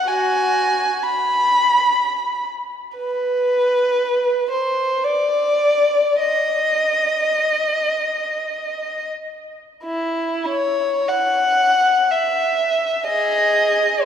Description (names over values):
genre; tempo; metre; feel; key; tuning
classical, free, expressive piece for unaccompanied violin; 38-63 BPM; 3/4; rubato; unclear; A4 = 440 Hz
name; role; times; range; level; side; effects
warm violin; solo; 0.0-14.0 s; E4 to B5; -17 LUFS; equal; none
room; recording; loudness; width
wet church reverb, RT60 3.6 s; heard from further back in the room; -16 LUFS; side -8 dB against mid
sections
0.0-9.8 A section; 9.8-14.1 B section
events
none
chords
none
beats
| 0.07 1.02 1.98 | 2.97 3.98 5.05 | 6.20 7.33 8.44 | 9.83 11.07 12.08 | 13.05